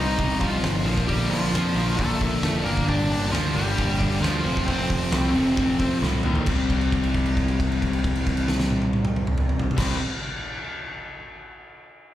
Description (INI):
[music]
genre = quiet-loud alternative rock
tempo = 134 BPM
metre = 4/4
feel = straight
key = C dorian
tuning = A4 = 440 Hz
[part]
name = smooth overdriven lead guitar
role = melody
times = 0.0-6.0 s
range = F3 to Eb5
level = -26 LUFS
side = equal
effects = none
[part]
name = crunchy overdriven guitar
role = riff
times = 0.0-10.0 s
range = F2 to Eb4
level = -30 LUFS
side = right 6 dB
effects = none
[part]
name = overdriven electric guitar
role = riff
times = 0.0-10.0 s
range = F2 to Eb4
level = -28 LUFS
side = left 7 dB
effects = slapback echo
[part]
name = growling picked electric bass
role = bass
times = 0.0-10.0 s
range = F1 to F2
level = -26 LUFS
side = equal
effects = overdrive
[part]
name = oversized low-tuned drum kit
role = drums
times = 0.2-9.9 s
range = crash cymbal, hi-hat, kick drum, snare drum, toms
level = -27 LUFS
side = equal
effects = none
[sound]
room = small room ambience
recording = live gig heard through the venue's PA, club ambience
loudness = -21 LUFS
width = side -13 dB against mid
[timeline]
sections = 0.0-6.5 A section; 6.5-10.0 B section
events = drum fill 6.0-6.5; held note 6.5-9.8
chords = 0.0 Cm; 0.9 Bb; 2.9 Gm7; 4.5 F; 6.5 C5